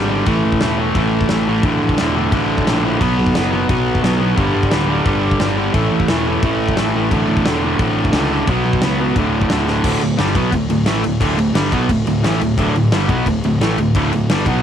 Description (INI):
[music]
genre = punk rock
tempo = 176 BPM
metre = 4/4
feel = straight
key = D major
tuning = A4 = 440 Hz
[part]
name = distorted electric guitar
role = riff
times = 0.0-14.6 s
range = D2 to B3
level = -20 LUFS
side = left 10 dB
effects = overdrive, cassette tape
[part]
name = overdriven electric guitar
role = riff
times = 0.0-14.6 s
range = D2 to B3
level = -19 LUFS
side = right 8 dB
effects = cassette tape
[part]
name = fuzz picked electric bass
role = bass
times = 0.0-14.6 s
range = D1 to C#2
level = -21 LUFS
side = left 1 dB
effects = overdrive
[part]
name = big rock drum kit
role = drums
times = 0.3-14.5 s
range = crash cymbal, kick drum, snare drum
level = -21 LUFS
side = left 1 dB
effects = cassette tape
[sound]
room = little or no reverb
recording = home recording on cassette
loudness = -14 LUFS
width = side -9 dB against mid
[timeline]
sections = 0.0-9.8 A section; 9.8-14.6 B section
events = drum fill 9.7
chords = 0.3 A5; 1.6 D5; 3.0 B5; 4.4 G5; 5.7 A5; 7.1 D5; 8.5 B5; 9.2 D5; 9.8 D